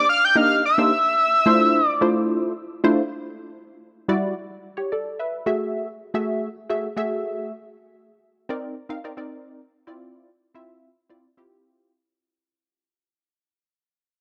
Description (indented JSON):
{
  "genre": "funk",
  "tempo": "109 BPM",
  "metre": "4/4",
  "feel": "straight",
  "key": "unclear",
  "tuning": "A4 = 440 Hz",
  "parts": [
    { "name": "fat analog lead", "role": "melody", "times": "0.0-2.5 s", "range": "E6 to G6", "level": "-19 LUFS", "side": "equal", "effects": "chorus, slapback echo" },
    { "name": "funky polysynth comp", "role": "accompaniment", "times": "0.0-11.9 s", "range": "G3 to F5", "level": "-25 LUFS", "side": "equal", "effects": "chorus" }
  ],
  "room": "light reverb, digital ambience",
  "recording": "none",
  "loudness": "-22 LUFS",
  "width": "mono",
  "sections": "0.0-3.1 A section; 3.1-11.9 B section",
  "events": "fade-out 3.1-11.9",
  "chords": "0.0 Cm9; 0.9 Dm9; 3.1 Em9; 5.3 F#m9; 7.5 Cm9; 9.7 Dm9"
}